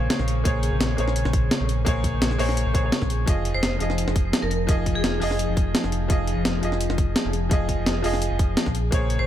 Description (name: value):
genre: liquid drum and bass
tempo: 170 BPM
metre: 4/4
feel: swing 53% on 16ths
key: F minor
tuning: A4 = 438 Hz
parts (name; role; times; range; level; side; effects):
- bright baby grand piano; accompaniment; 0.0-9.3 s; F3 to Eb5; -28 LUFS; equal; dub echo
- airy breathy pad; sustained chords; 0.0-9.3 s; Db3 to Ab4; -31 LUFS; left 2 dB; chorus, sidechain pumping
- sub bass with octave; bass; 0.0-9.3 s; F1 to Bb1; -25 LUFS; equal; none
- breakbeat sampler-style drum kit; drums; 0.1-9.2 s; hi-hat, snare drum; -26 LUFS; equal; none
- electronic kick drum; drums; 0.5-9.0 s; none; -22 LUFS; equal; none
- vibraphone with hard mallets; melody; 3.5-5.4, 9.2-9.3 s; Ab4 to C5; -31 LUFS; right 1 dB; tape echo
room: digital ambience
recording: none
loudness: -20 LUFS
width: side -11 dB against mid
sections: 0.0-9.3 A section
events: none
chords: 0.0 Bbm9; 3.3 Fm7; 8.7 Bbm9